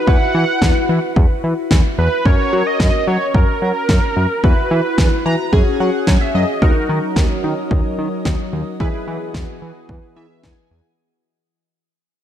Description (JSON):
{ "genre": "synth-pop", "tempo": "110 BPM", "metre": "4/4", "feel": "straight", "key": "unclear", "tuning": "A4 = 442 Hz", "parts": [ { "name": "wide unison lead", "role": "melody", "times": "0.0-5.5 s", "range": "A#4 to F#5", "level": "-20 LUFS", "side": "right 2 dB", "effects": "ping-pong delay" }, { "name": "warm analog keys", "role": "accompaniment", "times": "0.0-10.9 s", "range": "C#4 to A#5", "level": "-21 LUFS", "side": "left 1 dB", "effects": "chorus, phaser" }, { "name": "fat analog bass", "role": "bass", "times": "0.1-10.8 s", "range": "D#2 to F#3", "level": "-18 LUFS", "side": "equal", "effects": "none" }, { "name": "deep house drum kit", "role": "drums", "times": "0.1-10.6 s", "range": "kick drum, snare drum", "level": "-16 LUFS", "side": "equal", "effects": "none" }, { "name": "lush unison pad", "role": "sustained chords", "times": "6.6-11.0 s", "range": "E3 to D#5", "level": "-27 LUFS", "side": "equal", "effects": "chorus" } ], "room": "light reverb, digital ambience", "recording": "dark, warm production", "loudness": "-14 LUFS", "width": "side -10 dB against mid", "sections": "0.0-6.6 A section; 6.6-11.0 B section", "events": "synth keys fill 5.0-6.6, 9.9-11.0; fade-out 6.6-11.0", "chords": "0.1 Esus2; 2.3 F#; 4.4 Esus2; 5.5 F#sus2; 6.6 D#m7; 8.8 Emaj7", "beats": "| 0.07 0.62 1.16 1.71 | 2.25 2.80 3.35 3.89 | 4.44 4.98 5.53 6.07 | 6.62 7.16 7.71 8.26 | 8.80 9.35 9.89 10.44" }